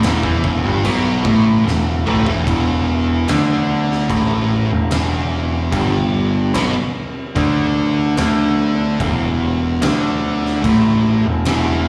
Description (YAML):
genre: stoner and doom metal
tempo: 73 BPM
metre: 4/4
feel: straight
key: E minor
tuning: A4 = 441 Hz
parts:
  - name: fuzz guitar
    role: riff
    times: 0.0-11.9 s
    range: E2 to E4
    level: -20 LUFS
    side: equal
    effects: distortion
  - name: overdriven picked electric bass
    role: bass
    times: 0.0-11.9 s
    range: E1 to E2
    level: -20 LUFS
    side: equal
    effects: none
  - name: oversized low-tuned drum kit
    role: drums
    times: 0.0-11.7 s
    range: crash cymbal, kick drum, snare drum, toms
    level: -26 LUFS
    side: equal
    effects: none
room: little or no reverb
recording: live gig heard through the venue's PA, recital hall reverb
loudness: -17 LUFS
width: mono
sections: 0.0-11.9 A section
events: drum fill 1.7-2.5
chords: 0.0 Em